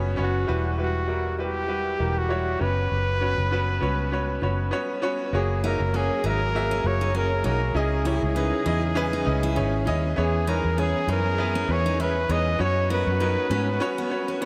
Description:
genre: piano-driven pop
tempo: 99 BPM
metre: 4/4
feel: swing 56% on 16ths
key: unclear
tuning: A4 = 440 Hz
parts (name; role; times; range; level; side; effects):
- bright upright piano; accompaniment; 0.0-14.5 s; C#3 to E5; -30 LUFS; equal; none
- vintage muted fingered electric bass; bass; 0.0-13.8 s; E1 to G#2; -28 LUFS; equal; none
- breathy trumpet; melody; 0.2-14.5 s; F#4 to D#5; -30 LUFS; equal; none
- warm symphonic string section; sustained chords; 5.3-14.5 s; C#3 to A#4; -38 LUFS; equal; none
- picked steel-string acoustic guitar; riff; 5.6-14.5 s; B3 to F#4; -35 LUFS; equal; none
room: moderate huge ambient reverb, RT60 6.6 s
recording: dreamy mix soaked in reverb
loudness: -24 LUFS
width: mono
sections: 0.0-5.3 A section; 5.3-14.5 B section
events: break 13.8-14.5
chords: 0.5 Emadd9; 2.6 F#sus4; 5.3 F#add9; 7.8 C#madd9; 10.2 E6; 12.6 F#sus4

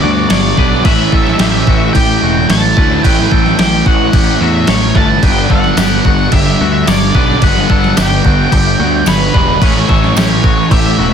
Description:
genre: rock, shoegaze and dream pop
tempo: 110 BPM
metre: 4/4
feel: straight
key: unclear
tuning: A4 = 439 Hz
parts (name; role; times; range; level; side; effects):
- octave-fuzz lead guitar; melody; 0.0-11.1 s; B4 to A5; -17 LUFS; right 1 dB; distortion, slapback echo
- twangy electric guitar; arpeggios; 0.0-11.1 s; F#4 to C#5; -20 LUFS; left 11 dB; lush chorus, slapback echo
- cranked stack guitar; riff; 0.0-11.1 s; G2 to E4; -17 LUFS; right 12 dB; overdrive, reverse reverb
- thick fuzz guitar; riff; 0.0-11.1 s; G2 to A3; -17 LUFS; left 15 dB; distortion, analog chorus
- fuzz picked electric bass; bass; 0.0-11.1 s; E1 to E2; -16 LUFS; equal; overdrive
- clean 12-bit digital drum machine; drums; 0.3-10.8 s; crash cymbal, kick drum, snare drum; -13 LUFS; equal; none
- tambourine; percussion; 5.8-10.3 s; none; -27 LUFS; right 15 dB; none
room: digital ambience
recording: dense, heavily limited modern master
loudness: -8 LUFS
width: side -7 dB against mid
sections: 0.0-11.1 A section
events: none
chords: 0.0 Gmaj7

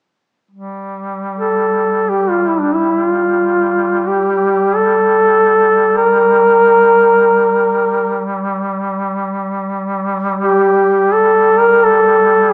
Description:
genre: caucasian folk, Caucasian lament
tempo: free time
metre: none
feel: none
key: G dorian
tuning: A4 = 439 Hz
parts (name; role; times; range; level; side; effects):
- warm duduk; drone; 0.5-12.5 s; G3; -22 LUFS; equal; none
- mellow duduk; melody; 1.4-12.5 s; D4 to Bb4; -13 LUFS; equal; none
room: moderate recital hall reverb, RT60 1.5 s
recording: recorded in a church or concert hall, small speaker sound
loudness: -13 LUFS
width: mono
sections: 0.5-12.5 A section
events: none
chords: none

